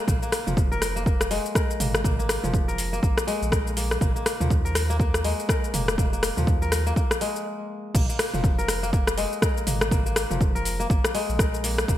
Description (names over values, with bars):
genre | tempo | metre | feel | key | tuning
afro house | 122 BPM | 4/4 | swing 59% on 16ths | unclear | A4 = 443 Hz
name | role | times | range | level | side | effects
kora | arpeggios | 0.0-12.0 s | F3 to Bb4 | -30 LUFS | left 2 dB | sidechain pumping, ping-pong delay
warm sub bass | bass | 0.1-12.0 s | F1 to Eb2 | -28 LUFS | equal | sidechain pumping
deep house drum kit | drums | 0.1-12.0 s | crash cymbal, hi-hat, rim click, shaker, toms | -26 LUFS | equal | overdrive, gated reverb
electronic kick drum | drums | 0.1-12.0 s | none | -23 LUFS | equal | overdrive
room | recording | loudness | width
light reverb | bright 1980s-style digital production | -21 LUFS | side -12 dB against mid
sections
0.0-7.9 A section; 7.9-12.0 B section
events
stop 7.5-7.9; drop 7.9-12.0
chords
0.1 Bb5; 4.0 Ab5; 7.9 Bb5